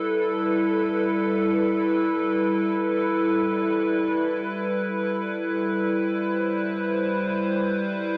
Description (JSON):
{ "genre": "ambient", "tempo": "free time", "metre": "none", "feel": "none", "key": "G major", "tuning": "A4 = 440 Hz", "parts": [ { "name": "evolving wavetable pad", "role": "solo", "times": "0.0-8.2 s", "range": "G3 to C5", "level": "-24 LUFS", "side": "equal", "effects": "chorus, built-in reverb, delay" } ], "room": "wet concert hall reverb, RT60 2.1 s", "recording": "worn, warbling old tape, cassette tape, warbly pitch drift", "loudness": "-24 LUFS", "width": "mono", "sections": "0.0-8.2 A section", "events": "none", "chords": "0.0 G69; 4.9 Am9/G" }